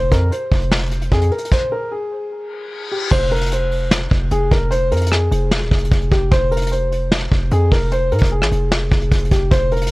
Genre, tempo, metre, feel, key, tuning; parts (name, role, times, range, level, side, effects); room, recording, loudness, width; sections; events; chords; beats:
hip hop, trap; 150 BPM; 4/4; half-time; F minor; A4 = 440 Hz
dark grand piano; melody; 0.0-9.9 s; G4 to C5; -21 LUFS; left 1 dB; tape echo
hard-hitting 808-style bass; bass; 0.0-9.9 s; Eb1 to Ab2; -18 LUFS; equal
vintage brush drum kit; drums; 0.1-9.9 s; crash cymbal, hi-hat, kick drum, rim click, snare drum; -18 LUFS; equal
reverse cymbal; sound effects; 2.5-3.1 s; -29 LUFS; left 6 dB
studio ambience; worn, warbling old tape, cassette tape, warbly pitch drift; -15 LUFS; side -21 dB against mid
0.0-3.1 A section; 3.1-9.9 B section
stop 1.5-3.1; reverse cymbal 2.5-3.1
0.0 Fm
0.32 0.71 1.11 | 1.51 1.92 2.31 2.71 | 3.12 3.52 3.92 4.32 | 4.71 5.12 5.51 5.92 | 6.32 6.71 7.12 7.51 | 7.92 8.31 8.71 9.12 | 9.52